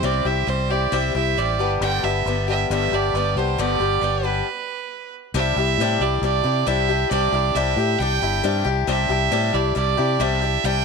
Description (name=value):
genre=folk rock and heartland rock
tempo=136 BPM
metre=4/4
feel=straight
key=C major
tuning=A4 = 441 Hz
part: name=clear fiddle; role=melody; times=0.0-10.8 s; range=B4 to G5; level=-23 LUFS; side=right 15 dB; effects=none
part: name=picked swing-style acoustic guitar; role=accompaniment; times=0.0-10.8 s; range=G2 to G4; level=-23 LUFS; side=left 12 dB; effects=none
part: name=fingered electric bass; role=bass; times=0.0-10.8 s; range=G1 to C3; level=-24 LUFS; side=right 1 dB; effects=none
room=light reverb, studio reverb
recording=1960s-style stereo with parts hard left and right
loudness=-18 LUFS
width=side -5 dB against mid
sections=0.0-5.3 A section; 5.3-10.8 B section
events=stop 4.5-5.3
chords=0.0 C; 1.6 G; 5.3 Cadd9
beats=| 0.03 0.47 0.92 1.36 | 1.80 2.25 2.69 3.13 | 3.58 4.02 4.46 4.91 | 5.35 5.79 6.23 6.67 | 7.12 7.56 8.00 8.44 | 8.88 9.32 9.76 10.20 | 10.65